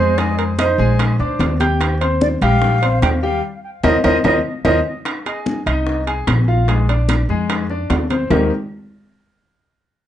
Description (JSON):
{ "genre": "Afro-Cuban jazz", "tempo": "148 BPM", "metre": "4/4", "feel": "straight", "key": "Eb major", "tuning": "A4 = 441 Hz", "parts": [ { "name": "mellow concert flute", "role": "melody", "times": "0.0-4.8 s", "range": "Bb4 to G5", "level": "-22 LUFS", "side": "right 2 dB", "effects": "plate reverb, analog delay" }, { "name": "clear grand piano", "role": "accompaniment", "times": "0.0-8.5 s", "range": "Eb3 to G6", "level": "-20 LUFS", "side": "left 3 dB", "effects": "none" }, { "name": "upright bass", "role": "bass", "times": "0.0-8.5 s", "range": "Bb1 to F2", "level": "-18 LUFS", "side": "equal", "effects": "none" }, { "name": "bongos", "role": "percussion", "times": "0.2-8.4 s", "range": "none", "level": "-26 LUFS", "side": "left 3 dB", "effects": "none" }, { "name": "congas", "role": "percussion", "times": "0.2-8.4 s", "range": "none", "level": "-24 LUFS", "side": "left 2 dB", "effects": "none" }, { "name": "timbales", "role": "percussion", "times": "0.2-8.4 s", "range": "none", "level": "-24 LUFS", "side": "right 6 dB", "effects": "none" }, { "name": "claves", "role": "percussion", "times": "0.6-8.4 s", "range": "none", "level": "-30 LUFS", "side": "right 4 dB", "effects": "none" } ], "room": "moderate studio reverb, RT60 0.5 s", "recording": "dark, warm production, nothing above 10.4 kHz", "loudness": "-15 LUFS", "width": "side -11 dB against mid", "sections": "0.0-5.1 A section; 5.1-8.3 B section; 8.3-9.9 C section", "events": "band accent 3.4-5.1; drum fill 4.4-5.1", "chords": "0.2 Fm7; 1.0 Bb7; 1.8 Eb6; 5.1 Fm7; 6.7 Bb9; 8.3 Eb6", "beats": "| 0.18 0.59 1.00 1.40 | 1.81 2.21 2.62 3.03 | 3.43 3.84 4.25 4.65 | 5.06 5.46 5.87 6.28 | 6.68 7.09 7.49 7.90 | 8.31" }